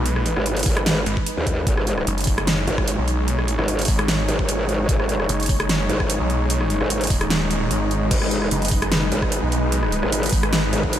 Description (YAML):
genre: heavy wobble dubstep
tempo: 149 BPM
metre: 4/4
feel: half-time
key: G# minor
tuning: A4 = 439 Hz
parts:
  - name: supersaw chords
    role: sustained chords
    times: 0.0-11.0 s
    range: G#3 to C#5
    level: -25 LUFS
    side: equal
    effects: sidechain pumping, low-pass filter
  - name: snarling distorted saw bass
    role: bass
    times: 0.0-10.7 s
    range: D#1 to B1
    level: -23 LUFS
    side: equal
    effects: distortion, overdrive
  - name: dubstep drum kit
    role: drums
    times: 0.1-11.0 s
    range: crash cymbal, hi-hat, rim click, snare drum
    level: -24 LUFS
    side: equal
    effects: overdrive
  - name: growl bass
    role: bass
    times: 0.4-11.0 s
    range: G#1 to D#2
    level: -22 LUFS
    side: equal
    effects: chorus, overdrive
  - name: electronic kick drum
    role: drums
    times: 0.7-10.9 s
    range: none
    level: -22 LUFS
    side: equal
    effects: overdrive
room: light reverb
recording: none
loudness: -18 LUFS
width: side -11 dB against mid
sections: 0.0-11.0 A section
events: kick drops out 7.3-8.1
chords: 0.0 G#m